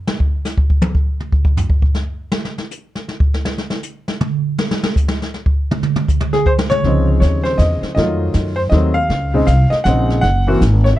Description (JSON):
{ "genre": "jazz piano trio", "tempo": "160 BPM", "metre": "3/4", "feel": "swing 64% on 8ths", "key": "Db major", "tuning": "A4 = 440 Hz", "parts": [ { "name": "jazz brush drum kit", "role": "drums", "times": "0.1-11.0 s", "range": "brushed snare drum, hi-hat, kick drum, snare drum, toms", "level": "-17 LUFS", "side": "equal", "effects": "none" }, { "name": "clear baby grand piano", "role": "melody", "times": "6.3-11.0 s", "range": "Db3 to Gb5", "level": "-16 LUFS", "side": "left 1 dB", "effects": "tape echo" }, { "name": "upright bass", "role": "bass", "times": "6.8-11.0 s", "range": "Gb1 to Gb2", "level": "-15 LUFS", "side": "equal", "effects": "none" } ], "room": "little or no reverb", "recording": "dark, warm production", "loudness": "-14 LUFS", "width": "side -14 dB against mid", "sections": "0.0-6.8 A section; 6.8-11.0 B section", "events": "drum solo 0.0-6.8", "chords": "0.0 N.C.; 6.8 Dbmaj9; 8.0 F7b9; 9.1 Bbm11; 10.2 N.C.", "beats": "| 0.07 0.45 0.82 | 1.20 1.57 1.95 | 2.33 2.70 3.08 | 3.45 3.83 4.21 | 4.58 4.96 5.33 | 5.71 6.08 6.46 | 6.84 7.21 7.59 | 7.97 8.34 8.72 | 9.10 9.48 9.85 | 10.23 10.61 10.99" }